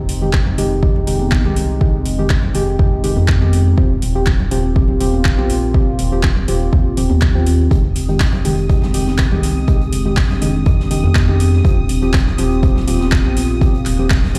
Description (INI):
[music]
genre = deep house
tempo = 122 BPM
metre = 4/4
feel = swing 53% on 16ths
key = F dorian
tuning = A4 = 440 Hz
[part]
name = dark analog pad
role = sustained chords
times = 0.0-14.4 s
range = Ab3 to G4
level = -27 LUFS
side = equal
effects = chorus, phaser, sidechain pumping
[part]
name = organ-like FM bass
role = bass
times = 0.0-14.4 s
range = Eb1 to F2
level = -20 LUFS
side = equal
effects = tube saturation, sidechain pumping
[part]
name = deep house drum kit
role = drums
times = 0.1-14.4 s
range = handclaps, hi-hat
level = -27 LUFS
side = equal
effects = none
[part]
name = deep mellow chord stab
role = stabs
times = 0.2-14.4 s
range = Eb3 to G4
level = -23 LUFS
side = equal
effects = chorus, cassette tape, sidechain pumping, dub echo
[part]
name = electronic kick drum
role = drums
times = 0.3-14.2 s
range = none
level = -17 LUFS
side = equal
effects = none
[part]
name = congas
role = percussion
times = 0.5-14.3 s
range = none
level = -28 LUFS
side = equal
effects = none
[part]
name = street-band drum kit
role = drums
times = 7.7-14.4 s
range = hi-hat, snare drum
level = -39 LUFS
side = equal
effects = none
[part]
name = soft string machine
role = texture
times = 7.7-14.4 s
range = Eb6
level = -36 LUFS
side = equal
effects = ensemble chorus, sidechain pumping
[sound]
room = light reverb, small room ambience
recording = played on a big sound system in a bare room, large studio reverb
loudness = -15 LUFS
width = mono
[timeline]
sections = 0.0-14.4 A section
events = none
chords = 0.0 Fm9; 3.8 Eb69; 7.7 Fm9; 11.6 Eb69